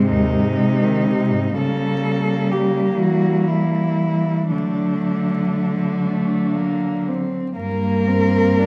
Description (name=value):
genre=classical, lyrical piece for cello ensemble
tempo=38-43 BPM (dotted quarters)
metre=6/8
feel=rubato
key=unclear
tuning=A4 = 439 Hz
part: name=rich cello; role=melody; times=0.0-8.7 s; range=D4 to Bb4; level=-27 LUFS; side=equal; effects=none
part: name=rich cello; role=second line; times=0.0-8.7 s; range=Ab3 to D4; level=-26 LUFS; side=equal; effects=none
part: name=warm cello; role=accompaniment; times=0.0-8.7 s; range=Eb2 to Bb3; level=-25 LUFS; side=equal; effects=none
part: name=rich cello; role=bass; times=0.0-8.7 s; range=G2 to E3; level=-24 LUFS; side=equal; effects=none
room=wet recital hall reverb, RT60 1.6 s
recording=dark, warm production, vinyl crackle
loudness=-20 LUFS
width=mono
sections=0.0-7.6 A section; 7.6-8.7 B section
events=none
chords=0.0 Ab/Eb; 1.6 C#dim7; 4.5 D; 7.6 Gm